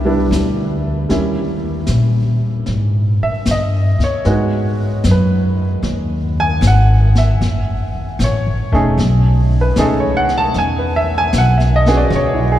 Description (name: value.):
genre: jazz ballad.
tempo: 76 BPM.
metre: 4/4.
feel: swing 67% on 8ths.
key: E major.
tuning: A4 = 440 Hz.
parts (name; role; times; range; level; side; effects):
warm baby grand piano; accompaniment; 0.0-12.6 s; G3 to A5; -18 LUFS; right 1 dB; none.
upright bass; bass; 0.0-12.6 s; E1 to A#2; -15 LUFS; equal; none.
jazz brush drum kit; drums; 0.3-12.6 s; brushed snare drum, hi-hat, kick drum, snare drum; -25 LUFS; left 2 dB; none.
room: wet cathedral reverb, RT60 7.0 s.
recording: recorded in a church or concert hall.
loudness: -13 LUFS.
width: side -12 dB against mid.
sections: 0.0-12.6 A section.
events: none.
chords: 0.0 Cmaj9; 1.1 D#7b9; 4.3 G#m7; 7.4 F#m9; 9.0 B13; 10.6 E6.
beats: 0.32 | 1.10 1.89 2.68 3.47 | 4.26 5.05 5.84 6.62 | 7.41 8.20 8.98 9.77 | 10.55 11.34 12.12.